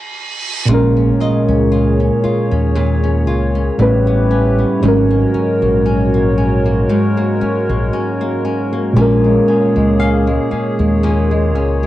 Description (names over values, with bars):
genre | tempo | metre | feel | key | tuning
contemporary R&B | 58 BPM | 4/4 | swing 54% on 16ths | Bb minor | A4 = 440 Hz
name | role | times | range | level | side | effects
reverse cymbal and impact | sound effects | 0.0-4.8 s | none | -26 LUFS | right 3 dB | none
muted felt-like synth keys | accompaniment | 0.7-11.9 s | Ab2 to B4 | -15 LUFS | equal | chorus
hollow soft pad | sustained chords | 0.7-11.9 s | Ab3 to Db5 | -21 LUFS | equal | chorus
flamenco guitar | arpeggios | 0.7-11.9 s | Ab2 to F4 | -20 LUFS | left 1 dB | tape echo
deep dub fingered electric bass | bass | 0.7-11.9 s | Ab1 to Eb2 | -17 LUFS | equal | none
glassy wavetable pluck | texture | 1.2-3.3, 10.0-11.9 s | Eb5 to F5 | -26 LUFS | left 1 dB | chorus, tape echo
room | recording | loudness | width
moderate booth ambience, RT60 0.2 s | home recording on cassette, nothing above 10.8 kHz | -12 LUFS | side -14 dB against mid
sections
0.7-11.9 A section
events
reverse cymbal 0.0-0.7; stop 0.0-0.7; impact 0.7-4.8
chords
0.0 N.C.; 0.7 Bbm7; 3.8 A9; 4.8 Ab9sus4; 9.0 Bbm7